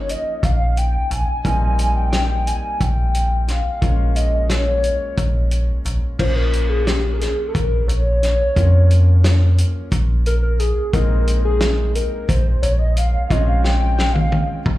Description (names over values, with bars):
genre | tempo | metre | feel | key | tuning
progressive instrumental, band music in an uneven meter | 177 BPM (eighths) | 7/8 | straight | Bb dorian | A4 = 441 Hz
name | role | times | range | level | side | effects
hollow square lead | melody | 0.0-14.5 s | G4 to Ab5 | -23 LUFS | left 1 dB | chorus, slapback echo, ping-pong delay
warm concert grand piano | accompaniment | 0.0-14.8 s | F3 to F4 | -29 LUFS | left 2 dB | slapback echo
metallic FM bass | bass | 0.0-14.8 s | G1 to F2 | -16 LUFS | equal | none
warm soul drum kit | drums | 0.1-14.8 s | crash cymbal, hi-hat, kick drum, snare drum, toms | -23 LUFS | equal | none
room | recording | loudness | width
small room ambience | live gig heard through the venue's PA, club reverb | -15 LUFS | side -16 dB against mid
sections
0.0-6.2 A section; 6.2-14.8 B section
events
analog synth lead solo 6.2-14.8; drum fill 13.6-14.8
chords
0.0 Bbm; 1.5 Bb13sus4; 3.8 Bbm7; 6.2 Bbm; 10.9 Ab/Bb; 13.3 Bbm7